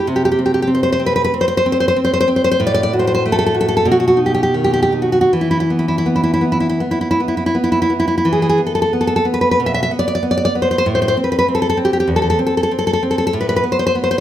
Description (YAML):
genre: romantic piece for solo classical guitar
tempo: 78-99 BPM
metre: 4/4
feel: rubato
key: E minor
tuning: A4 = 438 Hz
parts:
  - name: nylon-string guitar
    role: solo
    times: 0.0-14.2 s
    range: E2 to E5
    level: -13 LUFS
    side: equal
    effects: none
room: moderate recital hall reverb, RT60 1.3 s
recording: none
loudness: -13 LUFS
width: side -11 dB against mid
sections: 0.0-8.3 A section; 8.3-14.2 B section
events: none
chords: 0.0 N.C.; 2.6 Am6; 3.9 B; 5.3 E5; 10.8 Am; 13.3 Amadd9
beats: | 0.05 0.69 1.33 1.97 | 2.60 3.24 3.87 4.56 | 5.31 6.07 6.82 7.56 | 8.29 8.94 9.58 10.21 | 10.84 11.46 12.09 12.71 | 13.34 13.95